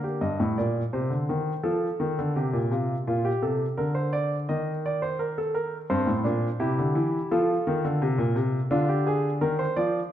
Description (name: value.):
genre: classical, baroque-style 3-part fugue for grand piano.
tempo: 85 BPM.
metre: 4/4.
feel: straight.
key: C minor.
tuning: A4 = 439 Hz.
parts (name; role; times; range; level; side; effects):
warm baby grand piano; solo; 0.0-10.1 s; G2 to Eb5; -24 LUFS; equal; none.
room: wet recital hall reverb, RT60 1.4 s.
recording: dark, warm production.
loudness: -24 LUFS.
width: side -11 dB against mid.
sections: 0.2-10.1 A section.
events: none.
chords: 0.2 Cm/G; 1.7 F7; 3.1 Bb; 4.5 Eb5; 5.9 C7/G; 7.3 F; 8.7 Bb7/D.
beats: | 0.23 0.95 1.66 2.37 | 3.08 3.79 4.50 5.21 | 5.91 6.61 7.31 8.02 | 8.72 9.43.